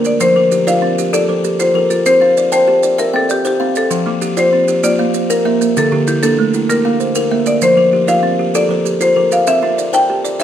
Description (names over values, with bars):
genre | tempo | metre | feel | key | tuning
southern african traditional, mbira-style interlocking cycle | 130 BPM (dotted quarters) | 12/8 | straight | F major | A4 = 440 Hz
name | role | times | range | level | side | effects
buzzing kalimba | arpeggios | 0.0-10.4 s | D3 to G5 | -17 LUFS | left 3 dB | none
kalimba | arpeggios | 0.0-10.4 s | D3 to A5 | -19 LUFS | right 7 dB | tape echo
maracas | percussion | 0.0-10.4 s | none | -27 LUFS | right 9 dB | none
marimba with hard mallets | melody | 0.1-10.4 s | G4 to G5 | -14 LUFS | left 1 dB | none
room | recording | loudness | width
wet recital hall reverb, RT60 1.4 s | none | -11 LUFS | side -10 dB against mid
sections
0.2-10.4 A section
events
none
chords
0.2 F; 2.1 C; 3.9 F; 4.8 Bb; 5.8 D5; 6.7 Bb; 7.6 F; 9.5 C